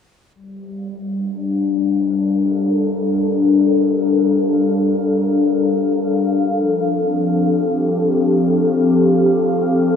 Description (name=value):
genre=ambient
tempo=free time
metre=none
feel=none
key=G minor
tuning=A4 = 440 Hz
part: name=airy breathy pad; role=sustained chords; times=0.7-10.0 s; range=F3 to Bb4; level=-15 LUFS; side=left 2 dB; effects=chorus
part: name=backwards swelling texture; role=texture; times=1.6-10.0 s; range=F5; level=-30 LUFS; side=right 3 dB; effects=built-in reverb
room=wet huge ambient reverb, RT60 8.1 s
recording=dreamy mix soaked in reverb, low-pass filter, studio reverb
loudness=-15 LUFS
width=side -7 dB against mid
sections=0.3-10.0 A section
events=none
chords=0.3 Gm7; 6.5 F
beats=free time